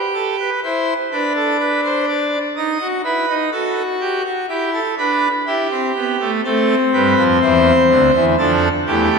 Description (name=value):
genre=classical, baroque-style 3-part fugue for pipe organ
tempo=62 BPM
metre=4/4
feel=straight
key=A minor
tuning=A4 = 439 Hz
part: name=pipe organ, full organ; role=solo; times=0.0-9.2 s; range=D2 to D#5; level=-14 LUFS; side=equal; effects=none
room=wet church reverb, RT60 2.8 s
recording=none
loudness=-15 LUFS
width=side -4 dB against mid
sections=0.0-9.2 A section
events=none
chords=0.0 Em (rootless); 0.6 Am; 2.6 B7/D#; 4.5 Em; 6.4 Am; 8.4 Dm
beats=0.63 1.60 | 2.57 3.53 4.50 5.47 | 6.44 7.42 8.39